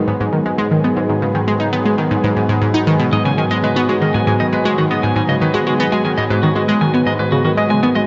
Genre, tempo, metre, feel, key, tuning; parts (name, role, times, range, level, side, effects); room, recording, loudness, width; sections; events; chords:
ambient, sequencer-driven space music; 118 BPM; 4/4; straight; G# minor; A4 = 442 Hz
lush unison pad; sustained chords; 0.0-8.1 s; G#2 to G#4; -21 LUFS; equal; chorus
analog pluck; riff; 0.0-8.1 s; G#2 to D#4; -19 LUFS; equal; chorus, analog delay
clean electric guitar; arpeggios; 3.1-8.0 s; F#4 to G#5; -23 LUFS; equal; analog delay
wet cathedral reverb, RT60 6.2 s; in a vast, echoing space, nothing above 7.7 kHz; -16 LUFS; mono
0.0-8.1 A section
0.0 G#m7